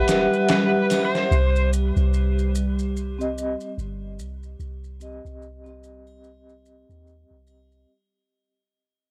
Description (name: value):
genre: trip hop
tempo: 73 BPM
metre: 4/4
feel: swing 59% on 16ths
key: unclear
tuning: A4 = 440 Hz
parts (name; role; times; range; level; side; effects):
- overdriven slide guitar; melody; 0.0-1.7 s; B4 to C5; -29 LUFS; equal; vintage 12-bit sampler grit, cassette tape, tape echo
- vibraphone with soft mallets; accompaniment; 0.0-7.9 s; C4 to F#5; -29 LUFS; equal; tremolo, cassette tape, tape echo
- warbly tape-like pad; sustained chords; 0.0-7.9 s; G3 to G4; -30 LUFS; equal; chorus, built-in reverb, cassette tape
- soft 808-style bass; bass; 0.0-7.9 s; E1 to Eb2; -26 LUFS; equal; none
- downlifter; sound effects; 0.0-1.3 s; none; barely audible; none; none
- boom bap sampler-style drum kit; drums; 0.1-1.3 s; hi-hat, snare drum; -27 LUFS; equal; none
- maracas and triangle; percussion; 0.1-7.9 s; none; -42 LUFS; equal; none
room: light reverb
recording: home recording on cassette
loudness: -22 LUFS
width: mono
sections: 0.0-7.9 A section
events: fade-out 0.0-7.9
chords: 0.0 Emadd9; 1.3 Cm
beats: 0.49 | 1.31 2.13 2.95 3.77 | 4.60 5.42 6.24 7.06